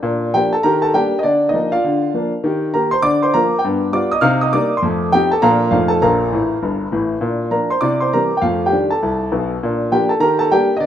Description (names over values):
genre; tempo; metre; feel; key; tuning
jazz, stride piano; 201 BPM; 4/4; swing 62% on 8ths; Bb major; A4 = 440 Hz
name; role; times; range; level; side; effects
clear concert grand piano; solo; 0.0-10.9 s; G1 to F6; -14 LUFS; equal; none
room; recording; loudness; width
moderate plate reverb, RT60 2.7 s; rough home demo mix; -14 LUFS; side -10 dB against mid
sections
0.0-7.2 A section; 7.2-10.9 A section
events
grand piano fill 6.3-7.2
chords
0.0 Bb; 0.6 Ebmaj7; 1.2 Bb/D; 2.4 Eb; 3.0 Bb/D; 3.6 G7; 4.2 Cm7; 4.8 F7; 5.4 Bb; 5.7 F7; 6.0 Bb5; 7.2 Bb; 7.8 C7; 8.4 F13; 9.6 Bb; 10.2 Ebmaj7